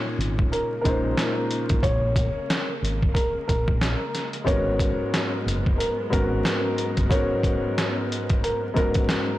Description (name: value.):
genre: hip hop, boom-bap hip-hop.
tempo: 91 BPM.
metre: 4/4.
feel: swing 61% on 16ths.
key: Bb phrygian.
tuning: A4 = 440 Hz.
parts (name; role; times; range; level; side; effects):
dark concert grand piano; accompaniment; 0.0-9.4 s; Ab2 to Db5; -26 LUFS; left 1 dB; none.
warm studio string section; sustained chords; 0.0-9.4 s; Db3 to Cb4; -34 LUFS; right 1 dB; stereo widening.
fingered electric bass; bass; 0.2-7.1 s; Gb1 to Bb1; -26 LUFS; equal; tube saturation.
trip hop sampler-style drum kit; drums; 0.2-9.3 s; hi-hat, kick drum, snare drum; -24 LUFS; equal; none.
dark upright piano; melody; 0.5-9.4 s; Bb4 to Db5; -29 LUFS; equal; ping-pong delay.
room: light reverb.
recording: blown-out, overdriven recording, vinyl crackle, overdrive.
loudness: -21 LUFS.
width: side -15 dB against mid.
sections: 0.0-9.4 A section.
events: none.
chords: 0.0 Bbm11; 4.5 Abm11.